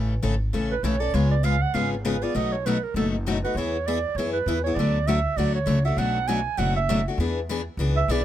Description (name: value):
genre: acoustic string swing (jazz manouche)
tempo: 198 BPM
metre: 4/4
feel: swing 58% on 8ths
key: unclear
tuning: A4 = 440 Hz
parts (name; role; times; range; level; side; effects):
- picked steel-string acoustic guitar; accompaniment; 0.0-8.2 s; B2 to A4; -26 LUFS; left 4 dB; none
- upright bass; bass; 0.0-8.2 s; F#1 to F#2; -26 LUFS; equal; none
- mellow clarinet; second line; 0.7-8.2 s; G#4 to G#5; -27 LUFS; right 7 dB; none
room: little or no reverb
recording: close, detailed microphones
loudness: -22 LUFS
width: side -12 dB against mid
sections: 0.0-8.2 A section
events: clarinet solo 0.0-8.2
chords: 0.0 A; 1.1 C#7; 2.4 B7; 3.6 E; 4.8 D; 6.0 Bm7; 7.2 E7